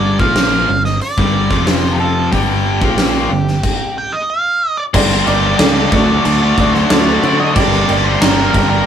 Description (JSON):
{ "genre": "classic rock", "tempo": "92 BPM", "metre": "4/4", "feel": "straight", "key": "G minor", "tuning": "A4 = 440 Hz", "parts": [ { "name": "octave-fuzz lead guitar", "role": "melody", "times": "0.0-8.9 s", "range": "G4 to G5", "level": "-19 LUFS", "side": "right 2 dB", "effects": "distortion" }, { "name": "biting overdriven guitar", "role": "riff", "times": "0.0-8.9 s", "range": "F2 to G4", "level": "-17 LUFS", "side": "left 4 dB", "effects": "none" }, { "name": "sludgy distorted guitar", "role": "riff", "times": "0.0-8.9 s", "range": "F2 to D4", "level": "-22 LUFS", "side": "right 5 dB", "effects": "overdrive" }, { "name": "picked electric bass", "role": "bass", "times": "0.0-8.8 s", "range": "F1 to D3", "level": "-18 LUFS", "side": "equal", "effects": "none" }, { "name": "big rock drum kit", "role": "drums", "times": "0.2-8.7 s", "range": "crash cymbal, hi-hat, kick drum, snare drum", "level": "-16 LUFS", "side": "equal", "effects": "none" }, { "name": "warm upright piano", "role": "accompaniment", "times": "4.9-8.8 s", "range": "F#4 to D5", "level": "-22 LUFS", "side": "right 3 dB", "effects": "none" }, { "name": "bright tonewheel organ", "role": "sustained chords", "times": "4.9-8.9 s", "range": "none", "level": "barely audible", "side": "none", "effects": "none" } ], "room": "moderate studio reverb, RT60 0.5 s", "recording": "rough rehearsal-room recording", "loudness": "-11 LUFS", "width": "side -8 dB against mid", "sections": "0.0-4.9 A section; 4.9-8.9 B section", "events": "stop 3.6-4.9", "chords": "0.0 Gm; 1.5 F5; 2.3 Gm; 4.3 N.C.; 4.9 Gm; 5.9 D; 7.6 Gm" }